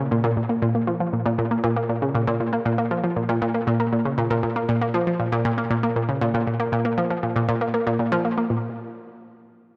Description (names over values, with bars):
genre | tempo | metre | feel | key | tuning
ambient | 118 BPM | 4/4 | straight | Bb minor | A4 = 440 Hz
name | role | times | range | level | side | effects
analog pluck | solo | 0.0-8.7 s | Bb2 to Bb3 | -23 LUFS | equal | chorus, tape echo
room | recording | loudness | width
moderate plate reverb, RT60 2.8 s | none | -23 LUFS | mono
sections
0.4-8.5 A section; 8.5-9.8 B section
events
none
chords
none